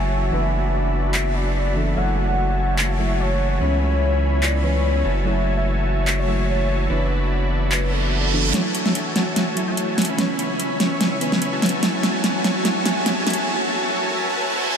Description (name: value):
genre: future bass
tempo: 146 BPM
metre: 4/4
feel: swing 54% on 16ths, half-time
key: F# minor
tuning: A4 = 440 Hz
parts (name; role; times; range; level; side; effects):
- warm velvety synth lead; melody; 0.0-13.5 s; A4 to G#5; -28 LUFS; left 1 dB; chorus, tape echo
- soft round pluck; accompaniment; 0.0-13.5 s; E3 to C#5; -28 LUFS; right 2 dB; wide subtle chorus, ping-pong delay
- airy breathy pad; sustained chords; 0.0-13.5 s; C#3 to F#4; -32 LUFS; equal; none
- dense compressed supersaw; riff; 0.0-14.8 s; C#4 to C#6; -26 LUFS; equal; low-pass filter, ping-pong delay
- saturated sub bass; bass; 0.0-13.5 s; F#1 to F#2; -23 LUFS; equal; high-pass filter
- pop drum kit; drums; 1.1-13.4 s; handclaps, hi-hat, snare drum; -24 LUFS; equal; overdrive
- reverse cymbal and riser; sound effects; 7.9-14.8 s; none; -29 LUFS; right 3 dB; none
room: wet huge ambient reverb, RT60 7.7 s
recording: dreamy mix soaked in reverb, high-pass filter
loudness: -18 LUFS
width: side -7 dB against mid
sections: 0.0-8.5 A section; 8.5-14.8 B section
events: reverse cymbal 7.9-8.5, 14.3-14.8; build-up 8.5-14.8; drum fill 8.5-13.5; riser 8.5-14.8; filter sweep on supersaw synth 8.5-14.8; filter sweep on soft synth lead 8.5-14.8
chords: 0.3 D69/F#; 2.0 F#m9; 3.6 C#m7; 5.0 F#m9; 6.9 D69/F#; 8.5 F#m9